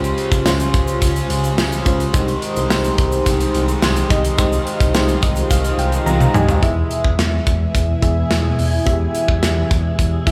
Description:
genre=1980s-style pop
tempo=107 BPM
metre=4/4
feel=straight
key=unclear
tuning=A4 = 439 Hz
part: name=FM electric piano with tremolo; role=accompaniment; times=0.0-10.3 s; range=Ab3 to Bb5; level=-23 LUFS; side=equal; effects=none
part: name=overdriven electric guitar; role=accompaniment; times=0.0-7.1 s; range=Ab2 to Db4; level=-29 LUFS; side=equal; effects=lush chorus
part: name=ensemble organ-string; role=sustained chords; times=0.0-10.3 s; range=B2 to C5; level=-28 LUFS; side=equal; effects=phaser, ensemble chorus
part: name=smooth synth bass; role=bass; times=0.0-10.3 s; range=C2 to E2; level=-22 LUFS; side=equal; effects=none
part: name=modern studio drum kit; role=drums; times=0.0-10.3 s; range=hi-hat, kick drum, snare drum, tambourine, toms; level=-21 LUFS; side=equal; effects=gated reverb
part: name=egg shaker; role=percussion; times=0.0-6.6 s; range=none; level=-39 LUFS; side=equal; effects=none
room=light reverb, studio ambience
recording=none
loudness=-17 LUFS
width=mono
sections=0.0-6.6 A section; 6.6-10.3 B section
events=FM electric piano fill 4.9-6.6, 10.0-10.3; drum fill 6.1-6.6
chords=0.0 Dbmaj7; 2.1 Abmaj7/C; 6.6 E

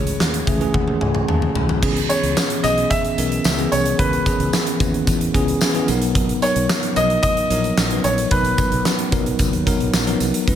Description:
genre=1980s-style pop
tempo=111 BPM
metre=4/4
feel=straight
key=unclear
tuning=A4 = 440 Hz
part: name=clear baby grand piano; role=melody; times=0.0-8.8 s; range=B4 to E5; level=-22 LUFS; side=equal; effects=none
part: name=bell-like tine electric piano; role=accompaniment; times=0.0-10.6 s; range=E3 to A5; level=-21 LUFS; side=left 1 dB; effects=medium stereo tremolo
part: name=mellow fretless electric bass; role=bass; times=0.0-10.6 s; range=A#1 to E2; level=-24 LUFS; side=equal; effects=none
part: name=huge arena drum kit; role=drums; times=0.1-10.6 s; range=crash cymbal, hi-hat, kick drum, snare drum, toms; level=-20 LUFS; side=equal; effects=gated reverb
part: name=tambourine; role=percussion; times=1.8-10.6 s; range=none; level=-33 LUFS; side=left 7 dB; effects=none
room=light reverb, small room reverb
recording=none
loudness=-16 LUFS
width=side -10 dB against mid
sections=0.0-1.8 A section; 1.8-10.6 B section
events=tine electric piano fill 0.2-1.8; drum fill 0.7-1.8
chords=0.0 Amaj7/C#; 1.8 C#m7; 5.9 Bmaj7

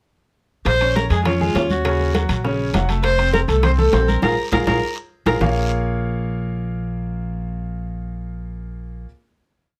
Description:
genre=latin, salsa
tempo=202 BPM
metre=4/4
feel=straight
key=Bb minor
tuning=A4 = 440 Hz
part: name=rich viola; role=melody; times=0.7-5.4 s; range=F4 to C5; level=-23 LUFS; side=equal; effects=none
part: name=upright bass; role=bass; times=0.7-9.0 s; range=F1 to F2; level=-24 LUFS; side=equal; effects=none
part: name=bongos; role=percussion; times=0.7-5.5 s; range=none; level=-30 LUFS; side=equal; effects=none
part: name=congas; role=percussion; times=0.7-5.5 s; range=none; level=-27 LUFS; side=equal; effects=none
part: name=guiro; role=percussion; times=0.7-5.5 s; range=none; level=-38 LUFS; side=equal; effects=none
part: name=timbales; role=percussion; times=0.7-5.5 s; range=none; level=-30 LUFS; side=equal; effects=none
part: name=bright grand piano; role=accompaniment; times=0.8-9.1 s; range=Db3 to Db6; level=-27 LUFS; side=equal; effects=none
room=little or no reverb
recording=close, detailed microphones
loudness=-20 LUFS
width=mono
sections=0.7-5.4 A section; 5.4-7.8 final chord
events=band accent 4.2-5.4; drum fill 4.5-5.4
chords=0.7 Bbm7; 1.9 Ebm7; 3.0 F; 4.2 Bb5; 5.4 Bbm7

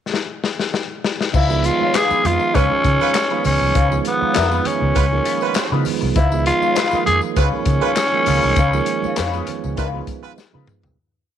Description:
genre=funk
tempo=100 BPM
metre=4/4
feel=straight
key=Db mixolydian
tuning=A4 = 441 Hz
part: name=crunchy breakbeat drum kit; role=drums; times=0.1-11.0 s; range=crash cymbal, handclaps, hi-hat, kick drum, snare drum, toms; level=-22 LUFS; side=left 3 dB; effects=none
part: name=mellow electric guitar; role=accompaniment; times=1.3-10.9 s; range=Eb4 to Db5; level=-26 LUFS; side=left 10 dB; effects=wah
part: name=vintage muted fingered electric bass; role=bass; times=1.3-10.9 s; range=C2 to Db3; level=-20 LUFS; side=equal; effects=none
part: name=congas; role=percussion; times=1.3-10.8 s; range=none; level=-32 LUFS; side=right 12 dB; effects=none
part: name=tambourine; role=percussion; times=1.3-11.0 s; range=none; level=-39 LUFS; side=left 13 dB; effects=none
part: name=growling tenor saxophone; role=melody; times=1.4-10.3 s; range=Cb4 to Ab4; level=-19 LUFS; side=equal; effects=none
part: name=mellow tonewheel organ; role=stabs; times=1.5-11.0 s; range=Eb3 to Db4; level=-24 LUFS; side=right 12 dB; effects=overdrive, chorus vibrato, slow rotary speaker
part: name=clear horn section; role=second line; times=2.5-10.3 s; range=Ab3 to Cb5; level=-26 LUFS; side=right 12 dB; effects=none
room=light reverb, small room ambience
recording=1960s-style stereo with parts hard left and right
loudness=-16 LUFS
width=side -9 dB against mid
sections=0.0-1.3 pickup bar; 1.3-11.0 groove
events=drum fill 0.1-1.3, 10.4-11.0; fade-out 8.6-11.0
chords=0.0 N.C.; 1.3 Db9

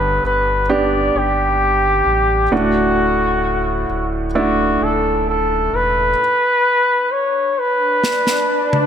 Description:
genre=pop ballad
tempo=65 BPM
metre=4/4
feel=straight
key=D major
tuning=A4 = 439 Hz
part: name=warm flugelhorn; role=melody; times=0.0-8.9 s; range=F#4 to D5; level=-16 LUFS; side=left 1 dB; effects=none
part: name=clear baby grand piano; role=accompaniment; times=0.0-6.2 s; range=G2 to G4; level=-20 LUFS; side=right 3 dB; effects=none
part: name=sub bass with octave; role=bass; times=0.0-6.2 s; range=D1 to A1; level=-24 LUFS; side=left 1 dB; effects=none
part: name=swell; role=sound effects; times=7.4-8.9 s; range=none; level=-23 LUFS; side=left 2 dB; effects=none
part: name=modern studio drum kit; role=drums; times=8.0-8.9 s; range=snare drum, toms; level=-20 LUFS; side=right 1 dB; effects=none
room=light reverb, small room ambience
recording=none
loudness=-14 LUFS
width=side -8 dB against mid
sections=0.0-8.9 A section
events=swell 7.4-8.9; drum fill 8.0-8.9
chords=0.0 G; 2.5 D; 6.2 N.C.

